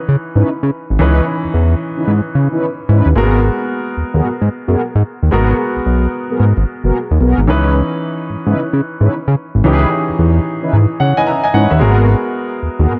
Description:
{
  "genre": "R&B",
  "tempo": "111 BPM",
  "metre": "4/4",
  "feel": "swing 63% on 16ths",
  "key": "C# dorian",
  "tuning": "A4 = 440 Hz",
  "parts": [
    { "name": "clear baby grand piano", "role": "accompaniment", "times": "0.0-13.0 s", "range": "E3 to A#5", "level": "-21 LUFS", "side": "equal", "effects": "none" },
    { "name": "fat analog bass", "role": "bass", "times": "0.1-13.0 s", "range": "F#1 to C#3", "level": "-14 LUFS", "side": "equal", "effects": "none" },
    { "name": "mellow synth brass", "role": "stabs", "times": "0.3-12.9 s", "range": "B3 to B4", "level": "-22 LUFS", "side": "equal", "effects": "chorus, digital delay" }
  ],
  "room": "light reverb, studio reverb",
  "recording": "dark, warm production",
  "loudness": "-15 LUFS",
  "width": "mono",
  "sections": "0.0-13.0 A section",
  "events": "none",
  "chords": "0.0 C#m9; 3.2 G#m9; 7.5 C#m9; 11.8 G#m9"
}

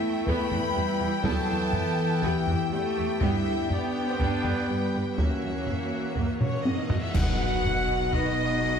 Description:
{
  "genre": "cinematic, epic orchestral film score",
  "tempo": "122 BPM",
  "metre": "4/4",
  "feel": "straight",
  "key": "unclear",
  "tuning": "A4 = 440 Hz",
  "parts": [
    { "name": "warm symphonic violin section", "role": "melody", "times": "0.0-8.8 s", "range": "C#5 to G5", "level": "-37 LUFS", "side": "left 3 dB", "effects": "none" },
    { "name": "mellow hollow flute section", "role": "second line", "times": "0.0-8.8 s", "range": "B4 to B5", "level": "-38 LUFS", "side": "right 1 dB", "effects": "none" },
    { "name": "rich studio violin section", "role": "second line", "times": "0.0-8.8 s", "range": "B4 to B5", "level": "-38 LUFS", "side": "left 4 dB", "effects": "none" },
    { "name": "rich symphonic viola section", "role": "accompaniment", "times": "0.0-8.8 s", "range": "D3 to D#5", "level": "-38 LUFS", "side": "right 1 dB", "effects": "none" },
    { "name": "bright trombone section", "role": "sustained chords", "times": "0.0-8.3 s", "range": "D3 to B3", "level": "-38 LUFS", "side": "right 4 dB", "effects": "none" },
    { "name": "dark French horn section", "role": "sustained chords", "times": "0.0-8.8 s", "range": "B3 to B4", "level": "-32 LUFS", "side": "left 4 dB", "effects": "none" },
    { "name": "pipe organ, plenum", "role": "sustained chords", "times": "0.0-8.8 s", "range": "E3 to G5", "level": "-37 LUFS", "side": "left 1 dB", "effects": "none" },
    { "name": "mellow trumpet section", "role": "stabs", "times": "0.0-8.8 s", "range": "C#5 to G5", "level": "-34 LUFS", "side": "equal", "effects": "none" },
    { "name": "rich symphonic cello section", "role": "bass", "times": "0.0-8.8 s", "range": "B2 to D4", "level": "-32 LUFS", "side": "right 1 dB", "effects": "none" },
    { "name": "rich symphonic double bass section", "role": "bass", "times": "0.3-8.8 s", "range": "B1 to G2", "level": "-34 LUFS", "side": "right 3 dB", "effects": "none" },
    { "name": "taiko ensemble", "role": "drums", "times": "0.3-8.6 s", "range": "none", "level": "-30 LUFS", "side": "equal", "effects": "none" },
    { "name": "cymbal swell, clash cymbals and concert bass drum", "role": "percussion", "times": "3.2-8.1 s", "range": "none", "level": "-35 LUFS", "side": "equal", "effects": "none" },
    { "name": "timpani", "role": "percussion", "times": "7.2-7.8 s", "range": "B2", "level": "-35 LUFS", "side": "left 2 dB", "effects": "none" }
  ],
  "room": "moderate scoring stage reverb, RT60 2.0 s",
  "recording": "dark, warm production",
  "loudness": "-24 LUFS",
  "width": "side -7 dB against mid",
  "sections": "0.0-7.1 A section; 7.1-8.8 B section",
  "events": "drum fill 6.4-7.1; band accent 7.1-7.6",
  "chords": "0.0 Em; 3.2 G; 5.2 F#7; 7.1 B"
}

